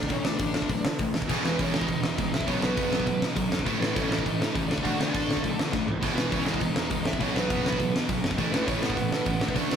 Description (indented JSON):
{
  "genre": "punk rock",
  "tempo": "203 BPM",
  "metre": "4/4",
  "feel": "straight",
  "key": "unclear",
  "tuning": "A4 = 441 Hz",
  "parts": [
    { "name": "bluesy overdriven lead guitar", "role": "melody", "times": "0.0-9.8 s", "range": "A3 to A5", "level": "-32 LUFS", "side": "right 1 dB", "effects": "distortion" },
    { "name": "fuzz picked electric bass", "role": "bass", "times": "0.0-9.8 s", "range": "E1 to D3", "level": "-34 LUFS", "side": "equal", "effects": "overdrive" },
    { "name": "big rock drum kit", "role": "drums", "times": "0.0-9.8 s", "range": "crash cymbal, hi-hat, kick drum, snare drum, toms", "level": "-28 LUFS", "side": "equal", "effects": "none" },
    { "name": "sludgy distorted guitar", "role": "riff", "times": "0.1-9.8 s", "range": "E2 to D4", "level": "-33 LUFS", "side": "left 6 dB", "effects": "overdrive" },
    { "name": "overdriven electric guitar", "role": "riff", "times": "1.3-9.8 s", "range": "E2 to D4", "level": "-32 LUFS", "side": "right 8 dB", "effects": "none" },
    { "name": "scooped high-gain guitar", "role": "riff", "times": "1.3-9.8 s", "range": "E2 to D4", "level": "-34 LUFS", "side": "equal", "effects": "distortion" }
  ],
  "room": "light reverb",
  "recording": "rough rehearsal-room recording",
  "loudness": "-24 LUFS",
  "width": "side -8 dB against mid",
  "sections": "0.0-9.8 A section",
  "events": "drum fill 5.7",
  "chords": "0.0 D5; 1.3 E5; 2.5 B5; 3.7 A; 4.7 D; 6.0 E5; 7.2 B5; 8.4 A"
}